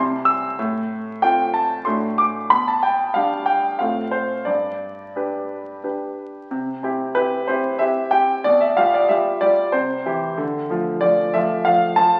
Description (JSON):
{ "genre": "classical-period piano sonatina", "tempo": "93 BPM", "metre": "3/4", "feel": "rubato", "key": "C major", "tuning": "A4 = 441 Hz", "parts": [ { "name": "clear concert grand piano", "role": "solo", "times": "0.0-12.2 s", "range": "G2 to E6", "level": "-20 LUFS", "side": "equal", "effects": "none" } ], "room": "wet recital hall reverb, RT60 1.4 s", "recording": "very old 78 rpm record, vinyl crackle", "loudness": "-20 LUFS", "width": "mono", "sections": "0.0-6.5 A section; 6.5-12.2 B section", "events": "none", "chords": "0.0 C; 0.6 F/A; 1.9 D7/A; 2.5 G/B; 3.8 F/A; 4.5 G; 6.5 C; 8.5 G7/B; 9.7 C; 10.4 Dm" }